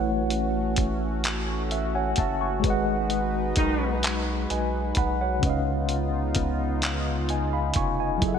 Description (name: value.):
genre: slow six-eight R&B.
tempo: 43 BPM (dotted quarters).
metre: 6/8.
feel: straight.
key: unclear.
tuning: A4 = 440 Hz.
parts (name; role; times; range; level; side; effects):
mellow tine electric piano; accompaniment; 0.0-8.4 s; C#3 to C#6; -27 LUFS; left 1 dB; medium stereo tremolo.
chorused pulse-width pad; sustained chords; 0.0-8.4 s; C#3 to G#5; -31 LUFS; equal; none.
round analog bass; bass; 0.0-8.4 s; E#1 to C#2; -29 LUFS; equal; none.
dusty soul sampler-style drum kit; drums; 0.3-8.4 s; handclaps, hi-hat, kick drum; -28 LUFS; equal; none.
warm horn section; stabs; 3.6-3.9 s; D#3 to D#4; -31 LUFS; right 1 dB; ping-pong delay.
room: moderate lush hall reverb, RT60 2.6 s.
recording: bright 1980s-style digital production.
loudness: -23 LUFS.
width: side -7 dB against mid.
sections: 0.0-8.4 A section.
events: tine electric piano fill 1.2-2.6.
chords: 0.0 A6; 2.6 G#m7; 5.4 C#9.